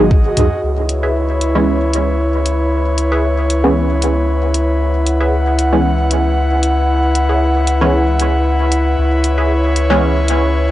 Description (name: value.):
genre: dub techno.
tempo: 115 BPM.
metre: 4/4.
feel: swing 53% on 16ths.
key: C# minor.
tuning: A4 = 440 Hz.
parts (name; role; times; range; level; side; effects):
airy breathy pad; sustained chords; 0.0-10.7 s; E4 to F#5; -17 LUFS; left 1 dB; chorus, sidechain pumping, cassette tape.
filtered dub chord stab; stabs; 0.0-10.7 s; E3 to C#4; -18 LUFS; right 1 dB; chorus, phaser, sidechain pumping, cassette tape, dub echo.
soft dub sub bass; bass; 0.0-10.7 s; G#1 to C#2; -16 LUFS; equal; sidechain pumping.
electronic hi-hat; drums; 0.4-10.4 s; none; -22 LUFS; left 1 dB; cassette tape.
electronic toms; percussion; 0.4-0.5 s; none; -21 LUFS; equal; overdrive, sidechain pumping on toms, cassette tape, sidechain pumping on perc, dub echo.
wavetable chord stab; riff; 1.0-9.5 s; G#4 to E5; -24 LUFS; right 1 dB; phaser, sidechain pumping, cassette tape, dub echo.
room: light reverb, digital ambience.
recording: home recording on cassette, nothing above 11.0 kHz.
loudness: -12 LUFS.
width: side -14 dB against mid.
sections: 0.6-10.7 A section.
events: none.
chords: 0.0 G#7(no3); 0.6 C#m7.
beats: 0.11 | 0.63 1.15 1.67 2.20 | 2.72 3.24 3.76 4.28 | 4.80 5.33 5.85 6.37 | 6.89 7.41 7.93 8.46 | 8.98 9.50 10.02 10.54.